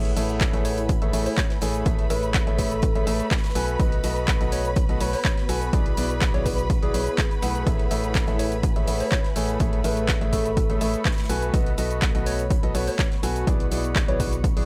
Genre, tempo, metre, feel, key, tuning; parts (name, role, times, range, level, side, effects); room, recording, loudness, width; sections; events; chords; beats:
piano house; 124 BPM; 4/4; straight; A major; A4 = 440 Hz
warm symphonic string section; sustained chords; 0.0-14.7 s; B4 to B5; -37 LUFS; equal; sidechain pumping
clear concert grand piano; riff; 0.0-14.7 s; A3 to G#5; -31 LUFS; equal; sidechain pumping
organ-like FM bass; bass; 0.0-14.7 s; A1 to B1; -31 LUFS; equal; sidechain pumping
granular cloud pad; texture; 0.0-14.7 s; A3 to C#6; -37 LUFS; equal; built-in reverb, sidechain pumping
house drum kit; drums; 0.1-14.7 s; handclaps, hi-hat, shaker; -33 LUFS; equal
modern studio drum kit; drums; 0.2-14.6 s; hi-hat, snare drum; -46 LUFS; equal
electronic kick drum; drums; 0.4-14.5 s; -26 LUFS; equal
soft struck synth lead; melody; 0.7-14.7 s; G#4 to C#5; -35 LUFS; equal; chorus, cassette tape
small room ambience; dry, gritty hardware recording; -23 LUFS; mono
0.0-14.7 A section
0.0 Amaj7; 3.6 B7; 5.7 E7/B; 7.7 Amaj7; 11.3 B7; 13.5 E7/B
0.41 0.89 1.38 | 1.86 2.34 2.83 3.31 | 3.79 4.28 4.76 5.25 | 5.73 6.21 6.70 7.18 | 7.67 8.15 8.63 9.12 | 9.60 10.09 10.57 11.05 | 11.54 12.02 12.51 12.99 | 13.47 13.96 14.44